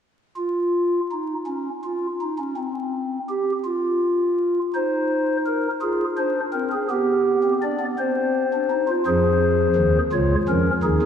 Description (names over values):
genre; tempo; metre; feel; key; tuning
classical, baroque-style 3-part fugue for pipe organ; 56 BPM (dotted quarters); 6/8; straight; F minor; A4 = 441 Hz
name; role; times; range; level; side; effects
pipe organ, stopped flute; solo; 0.4-11.1 s; Db2 to D5; -20 LUFS; equal; none
room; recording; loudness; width
wet church reverb, RT60 3.5 s; vinyl crackle; -20 LUFS; side -8 dB against mid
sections
0.4-11.1 A section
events
none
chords
0.4 N.C.; 4.8 Cm/Eb; 5.8 Fm; 6.9 G/B; 8.0 Cm; 9.1 Fm; 10.1 Bbm/Db